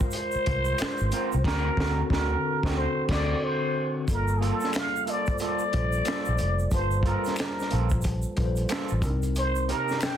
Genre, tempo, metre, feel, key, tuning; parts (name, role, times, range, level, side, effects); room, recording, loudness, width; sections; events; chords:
R&B, neo-soul; 91 BPM; 4/4; swing 62% on 16ths; G minor from 4.1 s; A4 = 441 Hz
trumpet with plunger mute; melody; 0.0-10.2 s; Ab4 to G5; -29 LUFS; right 1 dB; slapback echo, plate reverb
mellow tine electric piano; accompaniment; 0.0-10.2 s; C3 to A5; -32 LUFS; left 3 dB; medium stereo tremolo, plate reverb
crunchy breakbeat drum kit; drums; 0.0-10.2 s; crash cymbal, finger snaps, hi-hat, kick drum, snare drum; -30 LUFS; equal
egg shaker and finger snaps; percussion; 0.1-10.2 s; -41 LUFS; equal
vintage muted fingered electric bass; bass; 0.4-9.7 s; F1 to D2; -27 LUFS; equal
electric guitar through a small old amp; second line; 0.8-10.0 s; Bb3 to Bb4; -35 LUFS; right 9 dB; spring reverb, plate reverb
light reverb; dense, heavily limited modern master; -24 LUFS; side -10 dB against mid
0.0-4.1 A section; 4.1-10.2 B section
band accent 1.4-4.1; break 3.4-4.1
0.0 Ab69; 1.4 D7b13; 4.1 Gm9; 9.0 Cm7